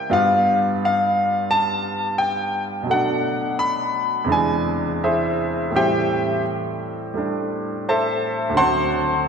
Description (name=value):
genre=solo jazz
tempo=85 BPM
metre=4/4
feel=swing 67% on 8ths, rubato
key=G mixolydian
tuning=A4 = 445 Hz
part: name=clear baby grand piano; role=solo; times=0.0-9.3 s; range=D2 to C6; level=-18 LUFS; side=equal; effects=none
room=wet church reverb, RT60 2.7 s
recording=recorded in a church or concert hall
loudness=-19 LUFS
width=side -6 dB against mid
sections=0.0-9.3 A section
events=grand piano solo 0.0-9.3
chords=0.1 G7; 2.9 Bm7; 4.3 Eaug7; 5.7 Am7; 8.6 D7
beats=| 0.11 0.80 1.49 2.18 | 2.87 3.57 4.28 5.00 | 5.73 6.44 7.15 7.86 | 8.56 9.26